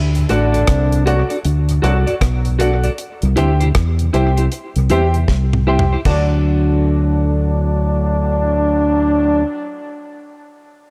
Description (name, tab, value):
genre	roots reggae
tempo	78 BPM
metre	4/4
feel	swing 62% on 16ths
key	D mixolydian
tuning	A4 = 440 Hz
part	fingered electric bass	bass	0.0-9.4 s	A1 to E2	-18 LUFS	equal	tube saturation
part	deep reggae drum kit	drums	0.1-6.3 s	crash cymbal, hi-hat, kick drum, rim click, snare drum, toms	-23 LUFS	equal	none
part	mellow tonewheel organ	accompaniment	0.2-9.4 s	D2 to F#4	-26 LUFS	equal	slow rotary speaker
part	clear trombone section	second line	0.3-9.4 s	A2 to F#4	-23 LUFS	equal	dub echo
part	clean electric guitar	accompaniment	0.3-9.6 s	E4 to D5	-26 LUFS	equal	subtle chorus, dub echo
part	dark upright piano	stabs	0.3-9.4 s	F#4 to G5	-26 LUFS	equal	none
room	light reverb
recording	none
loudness	-16 LUFS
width	mono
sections	0.0-6.1 A section; 6.1-9.1 B section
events	drum fill 5.3-6.1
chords	0.0 D; 3.0 C; 6.1 D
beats	0.68 1.45 2.21 | 2.98 3.75 4.52 5.29 | 6.06 6.83 7.60 8.37